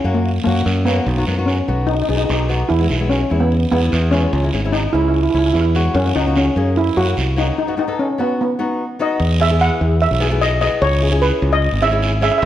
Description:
calypso; 148 BPM; 4/4; straight; E major; A4 = 438 Hz
steel pan; melody; 0.0-12.4 s; A#3 to F#5; -18 LUFS; right 1 dB
flamenco guitar; accompaniment; 0.0-12.4 s; G#3 to A4; -24 LUFS; left 4 dB
fingered electric bass; bass; 0.0-12.5 s; G#1 to F#2; -17 LUFS; equal
guiro; percussion; 0.3-12.5 s; -28 LUFS; right 4 dB
moderate recital hall reverb, RT60 1.5 s; worn, warbling old tape, cassette tape, warbly pitch drift; -14 LUFS; side -12 dB against mid
0.0-9.2 A section; 9.2-12.5 B section
break 7.6-9.2
0.0 F#; 1.1 B; 2.7 E; 4.3 C#m; 6.0 F#; 7.6 B; 9.2 E; 10.8 C#m

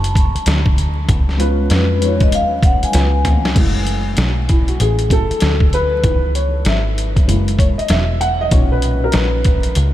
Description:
hip hop, jazz-hop; 97 BPM; 4/4; swing 64% on 16ths; F# dorian; A4 = 440 Hz
vibraphone with soft mallets; melody; 0.0-3.4 s; B4 to A5; -23 LUFS; left 2 dB; tape echo
overdriven picked electric bass; bass; 0.0-9.9 s; E1 to E#2; -17 LUFS; equal
trip hop sampler-style drum kit; drums; 0.0-9.9 s; crash cymbal, hi-hat, kick drum, snare drum, toms; -16 LUFS; equal
dark grand piano; accompaniment; 1.4-9.7 s; A#2 to F#5; -20 LUFS; left 1 dB; wide subtle chorus
light reverb; vinyl crackle; -13 LUFS; side -13 dB against mid
0.0-3.6 A section; 3.6-9.9 A section
vibraphone solo 0.0-3.6; drum fill 2.9-3.6; grand piano solo 3.6-9.9
0.0 Bm7 (rootless); 1.1 C#7; 3.6 F#m7; 6.0 C#m7; 7.3 F#7; 8.5 Bmaj7

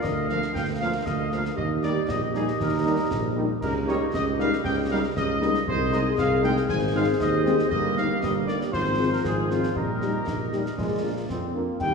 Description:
military-style march for wind band; 117 BPM; 2/4; straight; Eb major; A4 = 439 Hz
dark trumpet section; melody; 0.0-11.2 s; F4 to Ab5; -30 LUFS; equal
dark woodwind section; second line; 0.0-11.9 s; F4 to F5; -30 LUFS; left 3 dB
mellow tuba; bass; 0.0-11.9 s; G1 to F2; -27 LUFS; right 3 dB
concert snare drum, concert bass drum and clash cymbals; drums; 0.0-11.9 s; -34 LUFS; left 2 dB
dark French horn section; accompaniment; 0.3-11.6 s; F3 to G4; -31 LUFS; left 5 dB
clear trombone section; sustained chords; 0.3-11.9 s; Eb3 to Eb4; -32 LUFS; right 2 dB
piccolo; second line; 11.8-11.9 s; G5; -24 LUFS; left 4 dB
wet concert hall reverb, RT60 2.0 s; recorded in a church or concert hall, studio reverb; -22 LUFS; side -5 dB against mid
0.0-11.8 A section
0.0 Bb/D; 1.6 Eb; 3.6 Eb7/Db; 5.7 Ab/C; 6.7 Ab; 7.7 Eb/G; 8.7 Fm/Ab; 9.8 Eb/Bb; 10.8 Bb

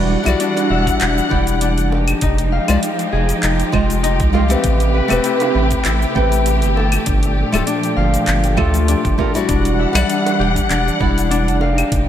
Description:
sunset chillout; 99 BPM; 4/4; swing 54% on 16ths; E minor; A4 = 440 Hz
nylon-string guitar; accompaniment; 0.0-11.6 s; G3 to G5; -20 LUFS; moving between left 3 dB and right 4 dB; auto-pan, ping-pong delay
dark symphonic string section; sustained chords; 0.0-12.1 s; Bb2 to F#5; -21 LUFS; equal
Celtic harp; arpeggios; 0.0-12.1 s; D4 to G5; -22 LUFS; left 4 dB; ping-pong delay
round analog bass; bass; 0.0-12.1 s; D1 to D2; -18 LUFS; equal
deep house drum kit; drums; 0.3-12.1 s; cabasa, claves, handclaps, hi-hat; -24 LUFS; left 1 dB; overdrive
bongos; percussion; 0.6-11.7 s; -30 LUFS; right 3 dB
electronic kick drum; drums; 0.9-12.0 s; -21 LUFS; equal
light reverb, small room ambience; -14 LUFS; side -10 dB against mid
0.0-12.1 A section
0.0 Em9; 1.9 Fm9; 4.6 Am9; 6.8 Gm9; 9.5 Em9

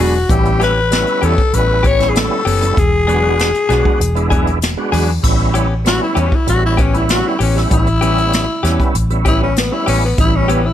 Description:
straight-eighth soul blues; 97 BPM; 4/4; straight; A mixolydian; A4 = 440 Hz
growling tenor saxophone; melody; 0.0-10.7 s; B3 to C#5; -17 LUFS; left 4 dB
tonewheel organ; accompaniment; 0.0-10.6 s; G3 to F#4; -20 LUFS; right 4 dB; slow rotary speaker, overdrive, chorus vibrato
direct-recorded clean electric guitar; stabs; 0.0-10.7 s; E3 to G#4; -22 LUFS; left 4 dB
vintage muted fingered electric bass; bass; 0.0-10.7 s; E1 to E2; -16 LUFS; equal
jazz brush drum kit; drums; 0.3-10.6 s; crash cymbal, hi-hat, kick drum, snare drum; -18 LUFS; equal
light reverb; -12 LUFS; side -11 dB against mid
0.0-5.2 A section; 5.2-10.7 B section
tenor saxophone solo 5.2-10.7
0.3 A9; 2.8 E9; 5.2 A9

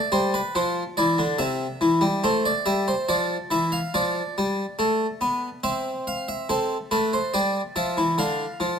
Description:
classical, baroque-style two-part invention for harpsichord; 71 BPM; 4/4; straight; A4 = 440 Hz
harpsichord; solo; 0.0-8.8 s; C3 to F5; -22 LUFS; equal
moderate recital hall reverb, RT60 1.6 s; close, detailed microphones; -22 LUFS; side -7 dB against mid
0.0-6.5 A section; 6.5-8.8 B section
0.0 Am (rootless); 1.4 C; 3.1 Dm; 4.8 Am; 8.2 Dm

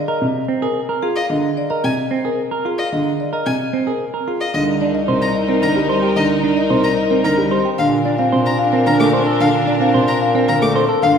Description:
classical, minimalist pattern music; 111 BPM; 3/4; straight; C dorian from 4.5 s; A4 = 441 Hz
marimba with medium mallets; melody; 0.0-11.2 s; G4 to A5; -21 LUFS; left 4 dB
semi-hollow electric guitar; arpeggios; 0.1-11.1 s; C4 to C5; -21 LUFS; right 4 dB
warm concert grand piano; accompaniment; 0.2-11.2 s; C3 to A3; -21 LUFS; right 1 dB
clear violin; arpeggios; 1.2-11.1 s; Eb5 to D6; -26 LUFS; left 3 dB
mellow wooden-headed alto flute; second line; 4.5-11.2 s; D4 to F4; -24 LUFS; right 4 dB
rich studio violin section; sustained chords; 4.5-11.2 s; D4 to Bb4; -23 LUFS; left 4 dB
clear bass clarinet; bass; 4.5-11.2 s; C2 to Bb2; -22 LUFS; left 1 dB
wet scoring stage reverb, RT60 2.0 s; heard from further back in the room; -15 LUFS; side -7 dB against mid
0.0-4.5 A section; 4.5-11.2 B section
0.0 Ab69; 4.5 Cm7; 7.8 Bbmaj7

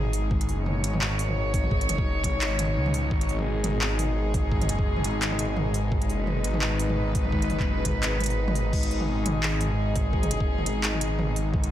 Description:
half-time drum and bass; 171 BPM; 4/4; swing 55% on 16ths, half-time; G# minor; A4 = 441 Hz
warm studio cello section; sustained chords; 0.0-11.7 s; B2 to C#5; -29 LUFS; left 1 dB; sidechain pumping
phased detuned saw bass; bass; 0.0-11.7 s; F#1 to C#2; -27 LUFS; equal; phaser
organic electronic drum kit; drums; 0.1-11.7 s; crash cymbal, handclaps, hi-hat, toms; -30 LUFS; right 1 dB
electronic kick drum; drums; 0.3-11.6 s; -27 LUFS; equal
little or no reverb; -23 LUFS; side -12 dB against mid
0.0-11.7 A section
0.0 G#m

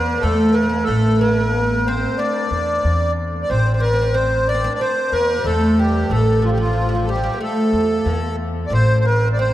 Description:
Arabic maqam ensemble; 92 BPM; 4/4; straight; A maqam bayati; A4 = 441 Hz
accordion; melody; 0.0-9.5 s; F4 to D5; -20 LUFS; equal; light tremolo tuning
oud; second line; 0.0-9.5 s; F3 to D4; -21 LUFS; equal
upright bass; bass; 0.0-9.5 s; A1 to E2; -20 LUFS; equal
wet cathedral reverb, RT60 6.8 s; in a vast, echoing space; -16 LUFS; side -14 dB against mid
0.0-9.5 A section

